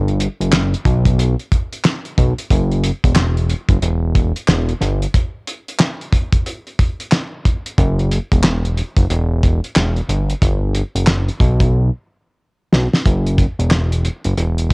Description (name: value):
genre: hip hop, boom-bap hip-hop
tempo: 91 BPM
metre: 4/4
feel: swing 63% on 16ths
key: unclear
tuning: A4 = 440 Hz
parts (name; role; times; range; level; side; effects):
- fat analog bass; bass; 0.0-14.7 s; E1 to B1; -16 LUFS; equal; tube saturation
- cloth-damped thuddy drum kit; drums; 0.1-14.7 s; handclaps, hi-hat, kick drum, snare drum; -16 LUFS; equal; cassette tape
room: little or no reverb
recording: home recording on cassette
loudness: -14 LUFS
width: side -39 dB against mid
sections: 0.0-13.1 A section; 13.1-14.7 B section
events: break 5.1-7.8; drum fill 11.7-13.1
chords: none